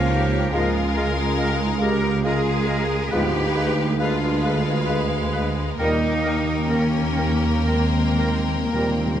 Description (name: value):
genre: classical, slow romantic movement for symphony orchestra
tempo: 55-70 BPM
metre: 3/4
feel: rubato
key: unclear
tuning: A4 = 441 Hz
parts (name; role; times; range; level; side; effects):
- rich studio violin section; melody; 0.0-9.2 s; F5 to G5; -34 LUFS; left 3 dB; none
- clear oboe; second line; 0.0-8.9 s; Bb4 to B4; -34 LUFS; equal; none
- dark clarinet; second line; 0.0-9.2 s; Ab3 to G4; -30 LUFS; left 3 dB; none
- mellow hollow concert flute; second line; 0.0-8.9 s; F5 to G5; -35 LUFS; left 2 dB; none
- rich symphonic violin section; second line; 0.0-9.2 s; Bb4 to Db5; -30 LUFS; left 6 dB; none
- dark bassoon; accompaniment; 0.0-8.9 s; F3 to Bb3; -32 LUFS; right 1 dB; none
- rich symphonic viola section; accompaniment; 0.0-9.2 s; Ab3 to Bb3; -29 LUFS; right 2 dB; none
- bright trombone section; sustained chords; 0.0-9.2 s; Ab2 to G3; -32 LUFS; right 2 dB; none
- warm French horn section; sustained chords; 0.0-9.2 s; Bb3 to Bb4; -31 LUFS; left 4 dB; none
- clear symphonic cello section; bass; 0.0-9.2 s; C4 to Bb4; -27 LUFS; equal; none
- mellow tuba; bass; 0.0-9.2 s; Db2 to Eb2; -26 LUFS; right 3 dB; none
- rich symphonic double bass section; bass; 0.0-9.2 s; Db2 to Eb2; -25 LUFS; right 2 dB; none
- timpani; percussion; 5.8-9.2 s; Eb3; -29 LUFS; left 2 dB; none
room: moderate concert hall reverb, RT60 2.0 s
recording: close, detailed microphones, vinyl crackle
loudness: -19 LUFS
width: side -10 dB against mid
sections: 0.0-9.2 A section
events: timpani fill 5.8-9.2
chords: 0.0 Bbm/Db; 0.5 Bbm7/Db; 3.1 Ddim7; 5.8 Eb